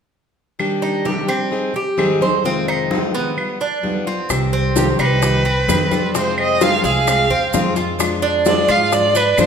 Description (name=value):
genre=latin, Cuban son and guajira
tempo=130 BPM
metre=4/4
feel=straight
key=C harmonic minor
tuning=A4 = 440 Hz
part: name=picked plugged-in steel-string acoustic guitar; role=accompaniment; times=0.6-9.5 s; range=F2 to Ab4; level=-22 LUFS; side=left 3 dB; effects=none
part: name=claves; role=percussion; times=0.6-9.5 s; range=none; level=-27 LUFS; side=right 1 dB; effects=none
part: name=congas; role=percussion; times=0.6-9.5 s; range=none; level=-25 LUFS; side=equal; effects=none
part: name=Cuban tres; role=arpeggios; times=0.8-9.5 s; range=B3 to C5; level=-21 LUFS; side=right 4 dB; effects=none
part: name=upright bass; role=bass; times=4.3-9.5 s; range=C2 to Ab2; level=-22 LUFS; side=right 1 dB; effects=none
part: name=bongos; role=percussion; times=4.3-9.5 s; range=none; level=-25 LUFS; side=left 6 dB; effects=none
part: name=maracas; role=percussion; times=4.3-9.5 s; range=none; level=-29 LUFS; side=right 6 dB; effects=none
part: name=warm violin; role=melody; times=4.8-9.5 s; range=G4 to F5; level=-17 LUFS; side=right 2 dB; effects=none
room=wet large studio reverb, RT60 1.4 s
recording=minimal, uncompressed stereo recording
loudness=-15 LUFS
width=side -7 dB against mid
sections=0.6-4.3 A section; 4.3-9.5 B section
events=none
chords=0.6 Cmadd9; 1.5 Abmaj7; 2.4 Fm7; 3.4 G7; 4.3 Cm; 6.1 Fm; 8.0 Ddim/F